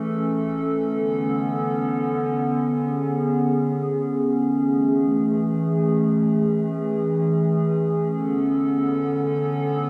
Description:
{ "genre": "hip hop", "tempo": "free time", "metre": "none", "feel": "none", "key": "unclear", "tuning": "A4 = 437 Hz", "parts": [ { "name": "warbly tape-like pad", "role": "solo", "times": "0.0-9.9 s", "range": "D3 to A4", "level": "-22 LUFS", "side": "equal", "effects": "chorus, built-in reverb" } ], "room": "wet lush hall reverb, RT60 2.8 s", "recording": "none", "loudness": "-22 LUFS", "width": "mono", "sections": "0.0-9.9 A section", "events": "none", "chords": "0.0 A; 0.9 Bm9; 4.5 Amaj7; 8.1 Bm9" }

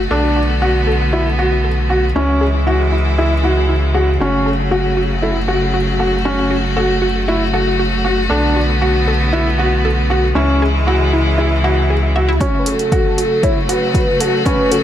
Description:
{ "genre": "piano and strings electronica", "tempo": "117 BPM", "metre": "4/4", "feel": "straight", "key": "F# minor", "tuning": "A4 = 440 Hz", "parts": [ { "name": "clear string quartet", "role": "sustained chords", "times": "0.0-14.8 s", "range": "C#3 to F#4", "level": "-19 LUFS", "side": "equal", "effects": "sidechain pumping" }, { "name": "warm sub bass", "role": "bass", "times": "0.0-14.8 s", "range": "F#1 to C#2", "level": "-17 LUFS", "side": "equal", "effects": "sidechain pumping, high-pass filter" }, { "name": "wide unison pluck", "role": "arpeggios", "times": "0.1-14.8 s", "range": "E4 to E5", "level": "-24 LUFS", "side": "left 1 dB", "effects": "sidechain pumping, ping-pong delay" }, { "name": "felt-muted upright piano", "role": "riff", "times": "0.1-14.7 s", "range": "C#4 to F#4", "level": "-18 LUFS", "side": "equal", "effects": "ping-pong delay" }, { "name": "warm velvety synth lead", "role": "melody", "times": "12.4-14.8 s", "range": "A4 to C#5", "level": "-18 LUFS", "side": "equal", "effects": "chorus" }, { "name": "electronic hi-hat", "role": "drums", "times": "12.4-14.8 s", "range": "none", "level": "-25 LUFS", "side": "right 2 dB", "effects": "overdrive, low-pass filter on hats" }, { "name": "electronic kick drum", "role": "drums", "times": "12.4-14.6 s", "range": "none", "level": "-18 LUFS", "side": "equal", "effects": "overdrive" } ], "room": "light reverb, digital ambience", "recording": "none", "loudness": "-13 LUFS", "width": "side -11 dB against mid", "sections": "0.0-12.4 A section; 12.4-14.8 B section", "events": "filter sweep on synth arpeggio sound 0.0-12.4; build-up 12.4-14.8", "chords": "0.1 Bm7; 2.2 C#m; 4.2 F#m; 8.3 Bm7; 10.4 C#m; 12.4 F#m" }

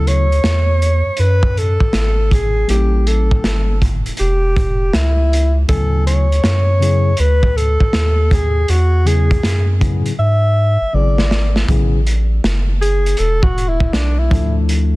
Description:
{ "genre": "hip hop, jazz-hop", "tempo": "80 BPM", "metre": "4/4", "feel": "swing 65% on 16ths", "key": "A major", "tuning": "A4 = 440 Hz", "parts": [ { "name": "mellow alto saxophone", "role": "melody", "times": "0.0-14.6 s", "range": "D4 to E5", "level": "-20 LUFS", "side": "equal", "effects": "none" }, { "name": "tine electric piano", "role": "accompaniment", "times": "0.0-15.0 s", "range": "C#3 to G#5", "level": "-23 LUFS", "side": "left 3 dB", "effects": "none" }, { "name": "soft dub sub bass", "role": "bass", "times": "0.0-15.0 s", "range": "E1 to G#2", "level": "-15 LUFS", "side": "equal", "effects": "none" }, { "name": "crunchy breakbeat drum kit", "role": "drums", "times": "0.1-14.9 s", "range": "hi-hat, kick drum, snare drum", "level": "-18 LUFS", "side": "equal", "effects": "vintage 12-bit sampler grit" } ], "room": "studio reverb", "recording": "dense, heavily limited modern master", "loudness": "-12 LUFS", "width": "side -20 dB against mid", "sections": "0.0-11.7 A section; 11.7-15.0 B section", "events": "drum fill 10.2-11.7; alto saxophone solo 11.7-15.0", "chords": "0.0 Dmaj7; 2.7 A7b9; 5.7 Dmaj7; 8.7 E; 11.7 Asus2; 14.3 Dmadd9" }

